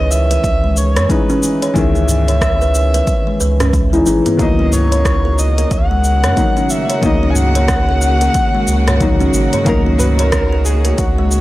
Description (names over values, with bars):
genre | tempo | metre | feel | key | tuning
organic downtempo | 91 BPM | 4/4 | swing 60% on 16ths | unclear | A4 = 441 Hz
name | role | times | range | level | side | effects
dark kamancheh | melody | 0.0-11.4 s | F#4 to G#5 | -20 LUFS | equal | tape echo
felt-muted upright piano | accompaniment | 0.0-11.4 s | D#3 to D#4 | -20 LUFS | left 3 dB | sidechain pumping, tape echo
kalimba | arpeggios | 0.0-11.3 s | G#3 to C#5 | -20 LUFS | right 1 dB | tape echo
warm sub bass | bass | 0.0-11.4 s | G#1 to F#2 | -15 LUFS | equal | sidechain pumping
organic electronic drum kit | drums | 0.1-11.4 s | hi-hat, rim click, shaker | -22 LUFS | equal | none
darbuka | percussion | 0.1-11.4 s | none | barely audible | none | none
electronic kick drum | drums | 0.4-11.1 s | none | -19 LUFS | equal | overdrive
warm chamber string section | sustained chords | 4.4-11.4 s | C#3 to F#5 | -22 LUFS | right 1 dB | sidechain pumping
room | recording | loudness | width
small room ambience | dry, gritty hardware recording | -12 LUFS | side -16 dB against mid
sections
0.0-11.4 A section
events
none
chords
0.0 C#madd9; 4.4 D#m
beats
0.44 1.10 | 1.76 2.42 3.08 3.74 | 4.39 5.05 5.71 6.37 | 7.03 7.69 8.35 9.01 | 9.67 10.33 10.99